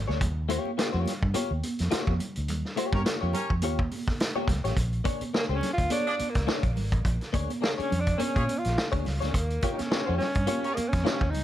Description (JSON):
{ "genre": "funk", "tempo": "105 BPM", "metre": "4/4", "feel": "swing 56% on 16ths", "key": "unclear", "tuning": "A4 = 440 Hz", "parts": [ { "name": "vintage muted fingered electric bass", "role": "bass", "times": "0.0-11.4 s", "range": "Ab1 to Bb2", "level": "-29 LUFS", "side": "equal", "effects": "none" }, { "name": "direct-recorded clean electric guitar", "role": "accompaniment", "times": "0.1-11.2 s", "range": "Bb3 to C#5", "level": "-32 LUFS", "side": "left 4 dB", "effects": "wide subtle chorus" }, { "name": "vintage drum kit", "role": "drums", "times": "0.1-11.4 s", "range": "hi-hat, kick drum, snare drum", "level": "-29 LUFS", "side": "equal", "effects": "none" }, { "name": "congas", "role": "percussion", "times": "0.2-11.4 s", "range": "none", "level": "-37 LUFS", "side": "right 4 dB", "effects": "none" }, { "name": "mellow horn section", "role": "second line", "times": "2.9-10.7 s", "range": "Db4 to D5", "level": "-33 LUFS", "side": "right 1 dB", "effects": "none" }, { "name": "breathy tenor saxophone", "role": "melody", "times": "5.4-11.4 s", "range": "Bb3 to F4", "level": "-31 LUFS", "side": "right 1 dB", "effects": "tape echo" } ], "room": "light reverb", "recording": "none", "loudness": "-25 LUFS", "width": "side -12 dB against mid", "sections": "0.0-4.8 A section; 4.8-11.4 B section", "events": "band accent 2.5-4.8; tenor saxophone solo 4.8-11.4", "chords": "0.2 Eb9; 4.8 Bb7#9; 9.3 Eb9", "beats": "| 0.20 0.78 1.35 1.92 | 2.49 3.06 3.63 4.20 | 4.77 5.34 5.91 6.48 | 7.05 7.62 8.20 8.77 | 9.34 9.91 10.48 11.05" }